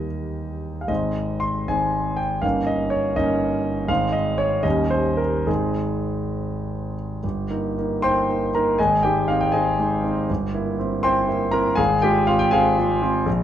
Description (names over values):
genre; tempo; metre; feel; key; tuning
classical, romantic character piece for solo piano; 67-84 BPM (dotted quarters); 6/8; rubato; Ab major; A4 = 443 Hz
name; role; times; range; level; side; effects
clear concert grand piano; solo; 0.0-13.4 s; G1 to C6; -19 LUFS; equal; none
room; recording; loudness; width
moderate stone room reverb, RT60 1.4 s; dark, warm production; -19 LUFS; side -10 dB against mid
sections
0.0-7.2 A section; 7.2-13.4 B section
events
none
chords
0.0 Eb; 0.9 Ab; 2.4 Eb7/G; 3.9 Ab; 4.6 Eb7; 5.5 Ab; 7.2 Eb/G; 8.8 Ab; 10.3 C7/G; 11.8 Fm/Ab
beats
0.06 | 0.89 1.68 | 2.44 3.17 | 3.89 4.65 | 5.48 6.36 | 7.23 8.03 | 8.78 9.53 | 10.29 11.03 | 11.78 12.52 | 13.26